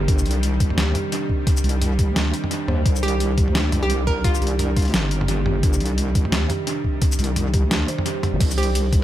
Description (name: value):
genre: half-time drum and bass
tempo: 173 BPM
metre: 4/4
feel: swing 58% on 16ths, half-time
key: C minor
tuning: A4 = 441 Hz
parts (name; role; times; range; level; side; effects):
- bowed-like drone; sustained chords; 0.0-9.0 s; C3 to C5; -30 LUFS; right 1 dB; built-in reverb, vintage 12-bit sampler grit, sidechain pumping
- kalimba; arpeggios; 0.0-9.0 s; C4 to C5; -28 LUFS; right 2 dB; dub echo
- deep soft wobble bass; bass; 0.0-9.0 s; G1 to Eb2; -21 LUFS; equal; chorus
- boom bap sampler-style drum kit; drums; 0.1-9.0 s; crash cymbal, hi-hat, shaker, snare drum, toms; -25 LUFS; equal; studio reverb, analog delay
- electronic kick drum; drums; 0.1-9.0 s; none; -20 LUFS; equal; studio reverb
- hollow square pluck; melody; 3.0-4.5, 8.6-8.8 s; F4 to Bb4; -28 LUFS; right 2 dB; chorus, tape echo
room: little or no reverb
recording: echo-heavy mix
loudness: -18 LUFS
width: side -13 dB against mid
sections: 0.0-8.4 A section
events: drop 0.0-8.4; kick drops out 7.7-8.4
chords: 0.0 Cm